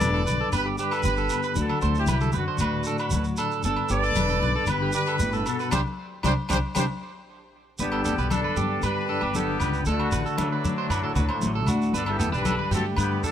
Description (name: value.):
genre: highlife guitar band.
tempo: 116 BPM.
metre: 4/4.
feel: straight.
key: G major.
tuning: A4 = 441 Hz.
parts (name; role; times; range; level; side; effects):
clear horn section; melody; 0.0-13.3 s; A3 to D5; -29 LUFS; equal; none.
semi-hollow electric guitar; accompaniment; 0.0-13.3 s; G2 to A4; -31 LUFS; left 5 dB; harmonic tremolo.
electric guitar at the edge of break-up; arpeggios; 0.0-13.3 s; D4 to C5; -30 LUFS; right 9 dB; tape echo.
upright bass; bass; 0.0-13.2 s; E1 to D3; -27 LUFS; equal; none.
agogo bells; percussion; 0.0-13.1 s; none; -34 LUFS; left 5 dB; none.
congas; percussion; 0.0-13.3 s; none; -32 LUFS; left 3 dB; none.
shekere; percussion; 0.0-13.3 s; none; -32 LUFS; right 2 dB; none.
brilliant trumpet; second line; 7.8-13.3 s; F#3 to D4; -36 LUFS; left 4 dB; none.
room: little or no reverb.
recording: faint mains hum.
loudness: -22 LUFS.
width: side -10 dB against mid.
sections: 0.0-7.8 A section; 7.8-13.3 B section.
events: band accent 5.7-7.8; drum fill 7.1-7.8.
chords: 0.0 Gadd9; 1.6 D; 3.6 Gadd9; 5.7 Csus2; 7.8 Gadd9; 9.9 D; 11.9 Gadd9.